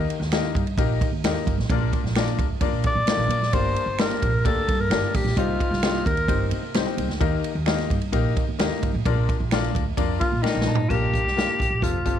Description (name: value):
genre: uptempo 1960s-style soul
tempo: 130 BPM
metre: 4/4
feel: straight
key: Bb major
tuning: A4 = 440 Hz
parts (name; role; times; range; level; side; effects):
- clear grand piano; accompaniment; 0.0-12.2 s; G2 to A5; -28 LUFS; left 12 dB; none
- upright bass; bass; 0.0-12.2 s; F1 to Eb3; -26 LUFS; right 1 dB; none
- swinging big-band drum kit; drums; 0.1-12.2 s; crash cymbal, hi-hat, kick drum, ride cymbal, snare drum, toms; -25 LUFS; right 1 dB; none
- congas; percussion; 0.1-12.2 s; none; -36 LUFS; right 16 dB; none
- finger snap; percussion; 0.3-10.5 s; none; -35 LUFS; right 14 dB; none
- breathy tenor saxophone; melody; 2.9-6.5, 10.2-12.2 s; Eb4 to D5; -25 LUFS; left 2 dB; tape echo
room: small room ambience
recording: 1960s-style stereo with parts hard left and right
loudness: -20 LUFS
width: side -10 dB against mid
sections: 0.0-10.9 A section; 10.9-12.2 B section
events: grand piano fill 6.5-7.2, 10.2-10.9; drum fill 10.4-10.9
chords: 0.0 Eb; 1.7 Bb; 3.5 Gm; 5.4 Cm; 7.2 Eb; 9.1 Bb